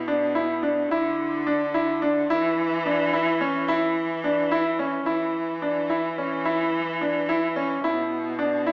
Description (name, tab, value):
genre	contemporary instrumental, chamber music in an uneven meter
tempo	216 BPM (eighths)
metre	5/8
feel	straight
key	unclear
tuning	A4 = 440 Hz
part	clear cello	bass	0.0-8.7 s	B2 to E3	-28 LUFS	equal	none
part	bright grand piano	arpeggios	0.1-8.7 s	C#4 to E4	-22 LUFS	equal	none
room	wet recital hall reverb, RT60 1.3 s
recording	small speaker sound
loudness	-21 LUFS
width	side -30 dB against mid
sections	0.0-5.1 A section; 5.1-8.7 B section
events	none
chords	0.0 Bm; 0.9 Dsus2; 2.3 C#m/E; 7.8 Bm